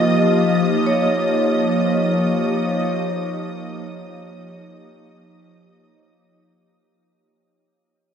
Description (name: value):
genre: ambient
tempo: free time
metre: none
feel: none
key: unclear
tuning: A4 = 441 Hz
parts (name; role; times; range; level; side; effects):
- warbly tape-like pad; sustained chords; 0.0-6.7 s; F3 to G4; -20 LUFS; equal; chorus, built-in reverb, phaser, shimmer reverb
- vibraphone with medium mallets; arpeggios; 0.0-6.7 s; Db5 to Eb5; -24 LUFS; left 1 dB; diffuse ambient delay, shimmer reverb
- organ-like drone; drone; 0.0-6.8 s; F3 to F4; -28 LUFS; equal; ensemble chorus, built-in reverb
- dark studio violin section; texture; 0.0-6.7 s; Eb5 to Eb6; -26 LUFS; left 1 dB; shimmer reverb
room: wet huge ambient reverb, RT60 7.1 s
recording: dreamy mix soaked in reverb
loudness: -17 LUFS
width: side -8 dB against mid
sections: 0.0-6.7 A section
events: fade-out 0.0-6.7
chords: 0.0 Eb